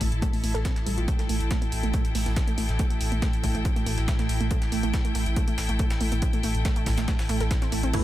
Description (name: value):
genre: driving peak-time techno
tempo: 140 BPM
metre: 4/4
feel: straight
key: unclear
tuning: A4 = 440 Hz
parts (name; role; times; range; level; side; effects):
- warbly dusty pluck; riff; 0.0-8.0 s; G3 to A4; -32 LUFS; right 3 dB; chorus, sidechain pumping, tape echo
- warm sub bass; bass; 0.0-7.9 s; A1; -28 LUFS; equal; overdrive, sidechain pumping, low-pass filter
- metallic inharmonic drone; drone; 0.0-8.0 s; A2 to A3; -34 LUFS; left 1 dB; chorus, built-in reverb, phaser, sidechain pumping
- breakbeat sampler-style drum kit; drums; 0.0-8.0 s; hi-hat, snare drum; -39 LUFS; equal; sidechain pumping on hats, high-pass filter on hats, high-pass filter on snare
- electronic kick drum; drums; 0.0-8.0 s; none; -26 LUFS; equal; none
- punchy analog drum machine; drums; 0.0-8.0 s; crash cymbal, hi-hat; -37 LUFS; right 1 dB; none
- rich studio string section; texture; 0.0-8.0 s; E4 to A5; -34 LUFS; left 2 dB; sidechain pumping
- filtered dub chord stab; stabs; 7.9-8.0 s; E3 to E4; -27 LUFS; right 4 dB; phaser, ensemble chorus, sidechain pumping
- impact; sound effects; 7.9-8.0 s; none; -27 LUFS; left 1 dB; none
room: little or no reverb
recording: none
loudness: -23 LUFS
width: side -14 dB against mid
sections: 0.0-7.9 A section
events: filter sweep on synth arpeggio sound 0.0-7.9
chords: 0.0 A5